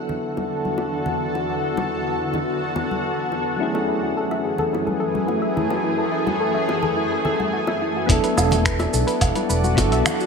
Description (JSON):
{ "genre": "sunset chillout", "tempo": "107 BPM", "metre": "4/4", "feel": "straight", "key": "unclear", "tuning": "A4 = 438 Hz", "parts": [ { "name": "soft electric-piano-like synth keys", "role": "accompaniment", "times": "0.0-10.3 s", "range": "F#3 to A4", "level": "-26 LUFS", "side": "right 1 dB", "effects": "chorus, tremolo, auto-pan, low-pass filter, digital delay" }, { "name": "shimmering ambient pad", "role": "sustained chords", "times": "0.0-10.3 s", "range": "E2 to D5", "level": "-23 LUFS", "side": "equal", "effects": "chorus, built-in reverb" }, { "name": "congas and bongos", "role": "percussion", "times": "0.1-10.2 s", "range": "none", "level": "-29 LUFS", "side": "left 3 dB", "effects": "none" }, { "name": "soft round pluck", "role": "arpeggios", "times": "3.6-10.3 s", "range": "E4 to E5", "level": "-26 LUFS", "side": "left 2 dB", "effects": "chorus, digital delay" }, { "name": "woody fretless electric bass", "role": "bass", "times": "8.1-10.0 s", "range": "E1 to B1", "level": "-22 LUFS", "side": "right 1 dB", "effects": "none" }, { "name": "dusty soul sampler-style drum kit", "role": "drums", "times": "8.1-10.3 s", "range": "cabasa, finger snaps, hi-hat, woodblock", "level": "-24 LUFS", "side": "right 1 dB", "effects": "low-pass filter on hats, low-pass filter on perc, low-pass filter on snare, low-pass filter on room" }, { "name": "electronic kick drum", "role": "drums", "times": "8.1-9.9 s", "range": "none", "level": "-22 LUFS", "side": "right 1 dB", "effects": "none" } ], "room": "moderate lush hall reverb, RT60 1.7 s, digital ambience", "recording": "none", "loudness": "-19 LUFS", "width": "side -5 dB against mid", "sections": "0.0-8.1 A section; 8.1-10.3 B section", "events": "filter sweep on synth keys 0.0-8.1", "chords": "0.0 E9sus4; 3.6 F#m9; 8.1 E9sus4" }